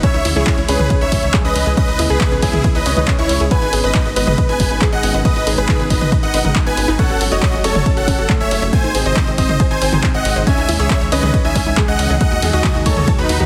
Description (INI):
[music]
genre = uplifting trance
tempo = 138 BPM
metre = 4/4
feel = straight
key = C# minor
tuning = A4 = 442 Hz
[part]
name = supersaw chords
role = melody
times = 0.0-13.5 s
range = D#4 to G#5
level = -22 LUFS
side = equal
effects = sidechain pumping, digital delay
[part]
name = dark baby grand piano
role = second line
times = 0.0-13.5 s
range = D#3 to C#5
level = -27 LUFS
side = equal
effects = tape echo
[part]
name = plucky unison lead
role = second line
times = 0.0-13.5 s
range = G#5 to G#6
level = -32 LUFS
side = equal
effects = none
[part]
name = lush unison pad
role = sustained chords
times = 0.0-13.5 s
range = B2 to F#4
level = -29 LUFS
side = equal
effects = chorus, sidechain pumping
[part]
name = unison pluck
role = arpeggios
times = 0.0-13.5 s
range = B3 to A5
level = -28 LUFS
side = equal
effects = sidechain pumping, tape echo
[part]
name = electronic kick drum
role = drums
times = 0.0-13.2 s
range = none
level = -19 LUFS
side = equal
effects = none
[part]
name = punchy analog drum machine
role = drums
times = 0.0-13.5 s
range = handclaps, hi-hat, ride cymbal, toms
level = -25 LUFS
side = equal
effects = sidechain pumping on hats, sidechain pumping on cymbals, sidechain pumping on toms
[part]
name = tight sequencer bass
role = bass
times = 0.1-13.5 s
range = F#1 to E2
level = -23 LUFS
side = equal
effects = sidechain pumping
[sound]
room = light reverb, digital ambience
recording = heavily compressed radio sound, multiband compression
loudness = -15 LUFS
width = mono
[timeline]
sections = 0.0-13.5 A section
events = none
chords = 0.0 C#madd9; 3.5 G#m; 7.0 F#m; 8.7 G#; 10.5 C#madd9; 12.2 D#dim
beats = | 0.03 0.47 0.90 1.34 | 1.77 2.21 2.64 3.08 | 3.51 3.95 4.38 4.82 | 5.25 5.69 6.12 6.55 | 6.99 7.42 7.86 8.29 | 8.73 9.16 9.60 10.03 | 10.47 10.90 11.34 11.77 | 12.21 12.64 13.08